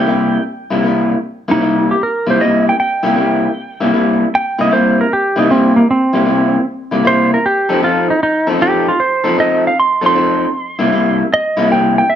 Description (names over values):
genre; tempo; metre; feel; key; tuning
blues; 155 BPM; 4/4; swing 68% on 8ths; C mixolydian; A4 = 440 Hz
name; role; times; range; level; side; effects
clean lap steel guitar; melody; 0.0-12.2 s; Bb3 to C6; -14 LUFS; right 2 dB; none
electric guitar through a small old amp; riff; 0.0-12.0 s; C3 to A4; -14 LUFS; left 1 dB; none
room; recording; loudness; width
moderate club reverb, RT60 0.8 s; none; -11 LUFS; side -9 dB against mid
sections
0.0-1.2 A section; 1.2-12.2 B section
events
electric slide guitar solo 1.2-12.2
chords
0.0 C7; 7.4 F7; 10.5 C7